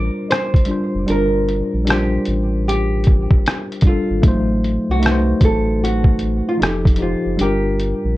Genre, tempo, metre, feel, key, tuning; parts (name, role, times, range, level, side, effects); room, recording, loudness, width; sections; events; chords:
lo-fi hip hop; 76 BPM; 4/4; swing 64% on 16ths; G minor; A4 = 440 Hz
nylon-string guitar; melody; 0.0-8.2 s; F4 to D5; -24 LUFS; right 1 dB; low-pass filter, analog delay
mellow tine electric piano; accompaniment; 0.0-8.2 s; F3 to C5; -20 LUFS; left 1 dB; medium stereo tremolo, low-pass filter
round analog bass; bass; 0.0-8.2 s; F1 to C2; -20 LUFS; equal
lo-fi sampler-style drum kit; drums; 0.3-8.0 s; hi-hat, kick drum, rim click; -15 LUFS; equal; vintage 12-bit sampler grit
moderate small room reverb, RT60 0.6 s; cassette tape, faint mains hum; -15 LUFS; side -17 dB against mid
0.0-8.2 A section
0.0 Gm7; 4.2 Adim7; 6.6 F9; 7.4 Gm7